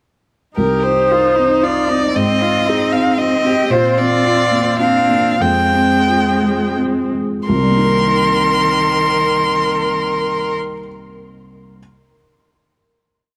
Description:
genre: neoclassical piano and strings.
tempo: 82-118 BPM.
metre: 3/4.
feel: rubato.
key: C minor.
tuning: A4 = 440 Hz.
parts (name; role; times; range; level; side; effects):
warm violin; melody; 0.6-10.5 s; Bb4 to C6; -18 LUFS; equal; none.
rich cello; second line; 0.6-10.5 s; Eb3 to G4; -25 LUFS; equal; none.
felt-muted upright piano; accompaniment; 0.6-11.8 s; C2 to Bb4; -22 LUFS; equal; none.
rich viola; accompaniment; 0.6-10.5 s; Ab3 to Bb4; -23 LUFS; equal; none.
room: light reverb.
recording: none.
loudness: -15 LUFS.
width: mono.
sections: 0.6-7.5 theme; 7.5-11.8 final chord.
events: slowing down 2.9-7.5.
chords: 0.6 Cm7; 2.2 Ab; 3.7 Bbadd9; 5.4 Fmadd9; 7.5 Cm7.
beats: | 0.58 1.12 1.64 | 2.16 2.68 3.19 | 3.71 4.24 4.80 | 5.42 6.08 6.78 | 7.50 8.21 8.92 | 9.63 10.34 11.05.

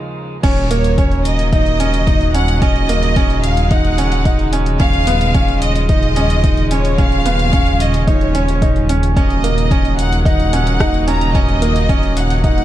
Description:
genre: piano and strings electronica.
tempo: 110 BPM.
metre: 4/4.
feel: straight.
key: Eb minor.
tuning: A4 = 440 Hz.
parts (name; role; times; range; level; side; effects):
warm string quartet; sustained chords; 0.0-12.6 s; Eb2 to Eb4; -24 LUFS; right 1 dB; sidechain pumping.
rich studio violin section; melody; 0.4-12.6 s; Db5 to Bb5; -21 LUFS; equal; none.
clear baby grand piano; riff; 0.4-12.6 s; Bb3 to Eb4; -20 LUFS; right 3 dB; none.
dark detuned saw bass; bass; 0.4-12.6 s; Eb1; -17 LUFS; equal; sidechain pumping.
deep house drum kit; drums; 0.4-12.6 s; crash cymbal, hi-hat, rim click; -28 LUFS; left 1 dB; none.
electronic kick drum; drums; 0.4-12.5 s; none; -16 LUFS; equal; none.
room: little or no reverb.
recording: dark, warm production.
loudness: -12 LUFS.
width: side -13 dB against mid.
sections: 0.4-12.6 A section.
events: break 0.0-0.4; drop 0.4-12.6.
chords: 0.4 Ebm7; 4.8 Dbadd9/Eb; 9.2 Ebm7.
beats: | 0.44 0.98 1.53 2.08 | 2.62 3.17 3.71 4.26 | 4.80 5.35 5.89 6.44 | 6.98 7.53 8.07 8.62 | 9.17 9.71 10.26 10.80 | 11.35 11.89 12.44.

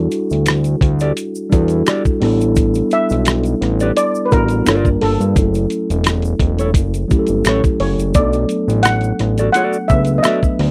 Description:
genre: R&B, neo-soul.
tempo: 86 BPM.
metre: 4/4.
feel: swing 53% on 16ths.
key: B minor.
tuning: A4 = 441 Hz.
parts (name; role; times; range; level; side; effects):
steel pan; melody; 0.0-10.7 s; A4 to F#5; -21 LUFS; equal; none.
mellow tine electric piano; accompaniment; 0.0-10.7 s; F#3 to B4; -21 LUFS; equal; none.
fat analog bass; bass; 0.0-10.7 s; E1 to G2; -20 LUFS; equal; none.
dusty soul sampler-style drum kit; drums; 0.1-10.7 s; hi-hat, kick drum, rim click; -20 LUFS; equal; none.
tube shaker and finger snaps; percussion; 0.1-10.6 s; none; -34 LUFS; equal; none.
mellow electric guitar; second line; 1.0-10.4 s; E4 to D5; -21 LUFS; equal; none.
room: light reverb.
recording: dry, close 1970s-style studio recording.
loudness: -16 LUFS.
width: mono.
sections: 0.0-10.7 A section.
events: none.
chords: 0.0 Em11; 2.2 A9sus4; 4.7 Gm7; 5.4 F#m7; 8.1 Bm7.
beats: 0.47 1.17 1.87 | 2.57 3.27 3.96 4.66 | 5.36 6.06 6.75 7.45 | 8.15 8.85 9.54 10.24.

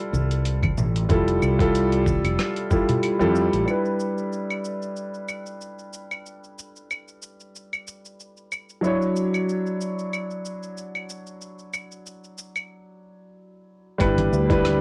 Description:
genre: sunset chillout.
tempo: 93 BPM.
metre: 4/4.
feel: swing 54% on 16ths.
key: G lydian.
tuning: A4 = 440 Hz.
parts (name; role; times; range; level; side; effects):
warm concert grand piano; accompaniment; 0.0-14.8 s; F#3 to C#5; -26 LUFS; equal; vintage 12-bit sampler grit, low-pass filter, cassette tape, tape echo.
fretless electric bass; bass; 0.1-3.7, 14.0-14.8 s; F1 to F2; -26 LUFS; equal; tube saturation, analog chorus.
dusty soul sampler-style drum kit; drums; 0.1-14.8 s; cabasa, claves, hi-hat, rim click; -34 LUFS; equal; overdrive, studio ambience, cassette tape.
congas and bongos; percussion; 0.1-3.3, 14.0-14.8 s; none; -31 LUFS; equal; none.
electronic kick drum; drums; 0.6-2.9, 14.0-14.6 s; none; -26 LUFS; equal; overdrive, studio ambience, cassette tape.
room: moderate studio reverb, RT60 0.5 s.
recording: home recording on cassette.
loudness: -24 LUFS.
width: mono.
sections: 0.0-3.7 A section; 3.7-14.0 B section.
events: filter sweep on grand piano 3.7-14.0; break 12.7-14.0.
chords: 0.0 Fmaj9; 3.7 G6; 8.8 Dmaj9; 14.0 G6.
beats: 0.45 | 1.10 1.74 2.39 3.03 | 3.68 4.32 4.97 5.61 | 6.26 6.91 7.55 8.20 | 8.84 9.48 10.13 10.78 | 11.42 12.07 12.71 13.36 | 14.00 14.65.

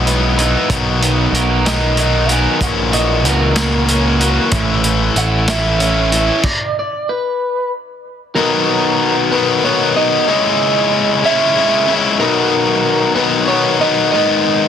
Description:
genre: indie rock.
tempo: 63 BPM (dotted quarters).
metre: 6/8.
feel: straight.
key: B major.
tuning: A4 = 440 Hz.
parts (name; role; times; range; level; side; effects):
crunchy overdriven guitar; riff; 0.0-14.7 s; G#2 to F#4; -14 LUFS; left 4 dB; none.
overdriven electric guitar; riff; 0.0-6.4 s; G#2 to A#4; -21 LUFS; right 9 dB; lush chorus, analog delay.
fuzz picked electric bass; bass; 0.0-6.3 s; A1 to C#2; -17 LUFS; right 1 dB; overdrive.
vintage drum kit; drums; 0.1-6.6 s; crash cymbal, hi-hat, kick drum, snare drum; -20 LUFS; equal; none.
electric guitar through a small old amp; melody; 1.7-14.7 s; A#4 to G#5; -18 LUFS; right 2 dB; plate reverb.
room: moderate studio reverb, RT60 0.7 s.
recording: dense, heavily limited modern master.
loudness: -12 LUFS.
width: side -8 dB against mid.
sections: 0.0-8.4 A section; 8.4-14.7 B section.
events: clean electric guitar solo 0.0-8.4; stop 6.4-8.4.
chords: 0.0 Emaj7; 0.7 Bmaj7; 2.6 F#7/A#; 4.5 A; 6.4 N.C.; 8.4 Bmaj7; 10.3 C#m; 12.2 Bmaj7; 14.1 G#m.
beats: | 0.70 1.65 | 2.61 3.56 | 4.52 5.48 | 6.44 7.40 | 8.36 9.31 | 10.28 11.23 | 12.20 13.16 | 14.12.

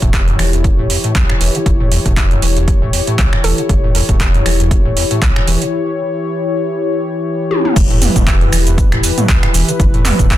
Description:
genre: acid house.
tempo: 118 BPM.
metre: 4/4.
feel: swing 56% on 16ths.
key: E dorian.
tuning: A4 = 441 Hz.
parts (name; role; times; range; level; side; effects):
warm analog pad; sustained chords; 0.0-10.4 s; E3 to C#5; -19 LUFS; left 3 dB; chorus, sidechain pumping.
overdriven acid bass; riff; 0.0-10.4 s; E2 to E3; -19 LUFS; equal; distortion, wide subtle chorus, cassette tape.
round analog bass; bass; 0.0-10.4 s; E1 to B1; -16 LUFS; equal; tube saturation, sidechain pumping.
electro analog drum machine; drums; 0.0-10.4 s; crash cymbal, finger snaps, handclaps, hi-hat, shaker, toms; -18 LUFS; right 1 dB; overdrive.
electronic kick drum; drums; 0.0-10.4 s; none; -14 LUFS; equal; none.
hollow square pluck; melody; 3.4-3.9 s; A4; -24 LUFS; right 6 dB; chorus, digital delay.
room: little or no reverb.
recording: dense, heavily limited modern master.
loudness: -11 LUFS.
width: side -13 dB against mid.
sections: 0.0-7.8 A section; 7.8-10.4 B section.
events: filter sweep on acid bass 0.0-7.8; break 5.7-7.8; drum fill 7.5; drop 7.8-10.4.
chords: 0.0 Em.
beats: 0.14 0.64 1.15 | 1.66 2.17 2.68 3.19 | 3.69 4.20 4.71 5.22 | 5.73 6.24 6.75 7.25 | 7.76 8.27 8.78 9.29 | 9.80 10.30.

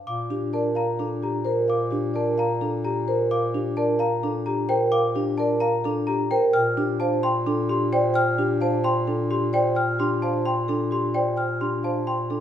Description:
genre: classical, minimalist pattern music.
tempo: 260 BPM (eighths).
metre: 7/8.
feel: straight.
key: Bb major.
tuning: A4 = 440 Hz.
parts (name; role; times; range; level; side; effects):
marimba with soft mallets; melody; 0.0-12.4 s; G4 to G5; -28 LUFS; left 4 dB; none.
large celesta; arpeggios; 0.1-12.4 s; G5 to F6; -28 LUFS; left 1 dB; none.
clear bass clarinet; bass; 0.1-12.4 s; Bb2; -28 LUFS; equal; none.
vibraphone with soft mallets; arpeggios; 0.3-12.4 s; D4 to C5; -25 LUFS; right 2 dB; none.
room: wet large studio reverb, RT60 1.2 s.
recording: heard from further back in the room.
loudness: -21 LUFS.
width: side -10 dB against mid.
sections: 0.1-12.4 A section.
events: none.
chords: 0.1 Bbmaj9.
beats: | 0.08 0.31 0.54 0.77 1.00 1.23 1.46 | 1.69 1.92 2.15 2.39 2.62 2.85 3.08 | 3.31 3.54 3.77 4.00 4.23 4.46 4.69 | 4.92 5.16 5.39 5.62 5.85 6.08 6.31 | 6.54 6.77 7.00 7.23 7.46 7.69 7.92 | 8.15 8.39 8.62 8.85 9.08 9.31 9.54 | 9.77 10.00 10.23 10.46 10.69 10.92 11.15 | 11.39 11.62 11.85 12.08 12.31.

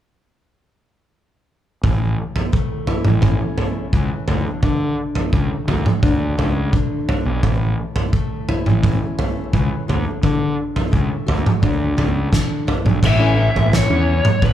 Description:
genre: quiet-loud alternative rock.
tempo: 86 BPM.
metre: 4/4.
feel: straight.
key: A major.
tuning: A4 = 440 Hz.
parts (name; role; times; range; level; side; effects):
fingerpicked steel-string acoustic guitar; arpeggios; 1.8-14.5 s; A2 to F#4; -25 LUFS; left 2 dB; none.
fuzz fingered electric bass; bass; 1.8-14.5 s; A1 to D3; -20 LUFS; equal; overdrive.
loose indie drum kit; drums; 1.8-14.5 s; crash cymbal, kick drum, snare drum, toms; -18 LUFS; right 1 dB; none.
lead guitar through a small cranked amp; melody; 13.1-14.5 s; B4 to E5; -20 LUFS; left 3 dB; overdrive.
room: light reverb.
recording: band playing live in one room.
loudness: -16 LUFS.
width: side -11 dB against mid.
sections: 1.8-13.0 A section; 13.0-14.5 B section.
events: none.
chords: 1.8 A; 4.3 D; 7.4 A; 9.9 D; 13.0 A.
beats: | 1.84 2.54 3.24 3.94 | 4.63 5.33 6.03 6.73 | 7.43 8.13 8.83 9.53 | 10.22 10.92 11.62 12.32 | 13.02 13.72 14.42.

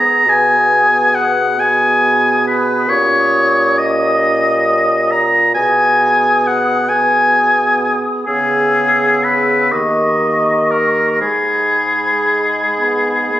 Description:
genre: classical, slow romantic movement for wind quintet.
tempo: 37-47 BPM (dotted quarters).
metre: 6/8.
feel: rubato.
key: G# minor.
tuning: A4 = 441 Hz.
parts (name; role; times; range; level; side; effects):
mellow hollow silver concert flute; melody; 0.0-13.4 s; B5 to E6; -24 LUFS; left 2 dB; none.
clear oboe; second line; 0.0-13.4 s; G#4 to A#5; -12 LUFS; left 1 dB; none.
warm French horn; accompaniment; 0.0-13.4 s; G#3 to C#4; -25 LUFS; right 1 dB; none.
warm clarinet; accompaniment; 0.0-13.4 s; G4 to G#4; -23 LUFS; right 4 dB; none.
mellow bassoon; bass; 0.3-13.4 s; G#2 to D#3; -21 LUFS; right 1 dB; none.
room: moderate concert hall reverb, RT60 1.9 s.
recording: recorded on a phone in the room, club reverb.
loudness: -11 LUFS.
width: side -13 dB against mid.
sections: 0.0-13.4 A section.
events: none.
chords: 0.3 G#m/B; 2.9 D#7/A#; 5.6 G#m/B; 8.3 C#m7; 9.7 D#7; 11.2 G#m.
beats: | 0.27 1.58 | 2.88 4.21 | 5.55 6.90 | 8.28 9.72 | 11.21 12.78.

